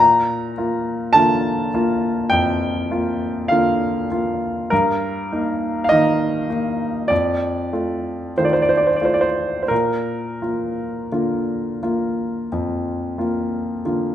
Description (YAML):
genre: classical, romantic nocturne for solo piano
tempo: 42-52 BPM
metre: 4/4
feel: rubato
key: Bb major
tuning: A4 = 440 Hz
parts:
  - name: clear grand piano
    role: solo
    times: 0.0-14.1 s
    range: F2 to Bb5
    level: -18 LUFS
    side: equal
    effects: none
room: moderate large studio reverb, RT60 1.1 s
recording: heard from further back in the room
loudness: -18 LUFS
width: side -11 dB against mid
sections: 0.0-14.1 A section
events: none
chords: 0.0 Bb; 4.7 Eb/G; 7.1 F7; 9.7 Bb